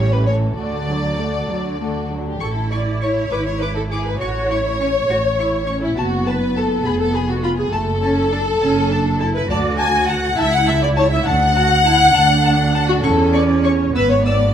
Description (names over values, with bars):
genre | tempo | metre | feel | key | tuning
quick classical-period movement for string orchestra | 68 BPM (dotted quarters) | 6/8 | straight | A major | A4 = 440 Hz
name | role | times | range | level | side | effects
rich studio violin section | melody | 0.0-14.3 s | B4 to E6 | -28 LUFS | left 2 dB | none
warm studio violin section | second line | 0.0-14.5 s | C#4 to G#5 | -20 LUFS | left 3 dB | none
warm studio viola section | accompaniment | 0.0-14.5 s | E3 to G#5 | -23 LUFS | left 1 dB | none
rich chamber cello section | bass | 0.0-14.5 s | A2 to F#4 | -22 LUFS | right 3 dB | none
rich studio double bass section | bass | 0.0-14.5 s | F1 to E2 | -21 LUFS | right 2 dB | none
room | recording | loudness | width
moderate scoring stage reverb, RT60 1.8 s | none | -15 LUFS | side -9 dB against mid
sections
0.0-2.4 A section; 2.4-14.5 B section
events
none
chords
0.0 A7; 0.6 D; 2.4 A; 3.3 E7/G#; 4.2 A; 6.0 F#m; 6.9 Fdim; 7.7 F#m; 9.5 D; 10.4 A/C# (rootless); 11.3 D; 13.0 Aadd11/E; 13.9 E/G#